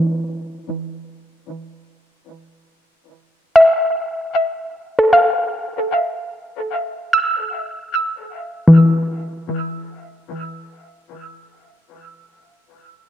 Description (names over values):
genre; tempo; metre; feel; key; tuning
ambient; free time; none; none; unclear; A4 = 440 Hz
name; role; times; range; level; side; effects
soft round pluck; solo; 0.0-12.5 s; E3 to E6; -15 LUFS; equal; chorus, dub echo
room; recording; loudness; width
wet spring reverb, RT60 2.3 s; echo-heavy mix, cassette tape; -16 LUFS; side -10 dB against mid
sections
0.0-13.1 A section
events
none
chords
0.0 Fmaj7/E; 10.5 N.C.